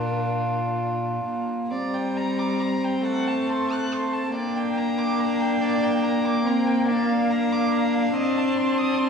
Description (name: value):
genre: classical, slow romantic movement for string quartet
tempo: 43-49 BPM (dotted quarters)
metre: 6/8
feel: rubato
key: G minor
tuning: A4 = 444 Hz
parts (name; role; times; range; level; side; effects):
- dark violin; melody; 0.0-9.1 s; Bb4 to Bb5; -34 LUFS; left 2 dB; none
- rich violin; second line; 0.0-9.1 s; F4 to F#6; -29 LUFS; right 1 dB; none
- rich viola; accompaniment; 0.0-9.1 s; G3 to D4; -25 LUFS; left 1 dB; none
- rich cello; bass; 0.0-9.1 s; Bb2 to D4; -26 LUFS; equal; none
room: wet scoring stage reverb, RT60 1.7 s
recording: vinyl crackle, studio reverb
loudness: -21 LUFS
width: side -5 dB against mid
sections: 0.0-1.7 A section; 1.7-9.1 B section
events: none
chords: 0.0 Bb; 1.7 Gm; 3.1 F#dim/A; 4.3 Gm/Bb; 6.9 Bb; 8.2 Adim/C